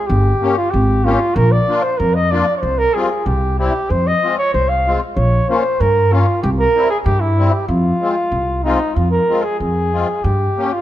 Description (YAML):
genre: alpine folk, alpine dance band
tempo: 95 BPM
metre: 2/4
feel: straight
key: F minor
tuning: A4 = 440 Hz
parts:
  - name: warm flugelhorn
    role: melody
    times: 0.0-10.8 s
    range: Eb4 to F5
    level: -17 LUFS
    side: equal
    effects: none
  - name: upright bass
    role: bass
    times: 0.1-10.5 s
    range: G1 to G2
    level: -17 LUFS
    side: equal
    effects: none
  - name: musette accordion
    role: accompaniment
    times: 0.4-10.7 s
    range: G3 to G4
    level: -22 LUFS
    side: left 4 dB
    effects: none
room: light reverb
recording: dark, warm production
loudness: -14 LUFS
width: side -13 dB against mid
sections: 0.0-9.0 A section; 9.0-10.8 A section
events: none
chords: 0.1 Gdim; 1.4 Bb; 2.6 Csus4; 3.3 C; 3.9 Fm; 5.2 Bbm; 6.4 C; 7.7 Fm; 10.2 Gdim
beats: | 0.09 0.73 | 1.36 1.99 | 2.62 3.26 | 3.90 4.54 | 5.17 5.80 | 6.43 7.06 | 7.69 8.32 | 8.96 9.61 | 10.25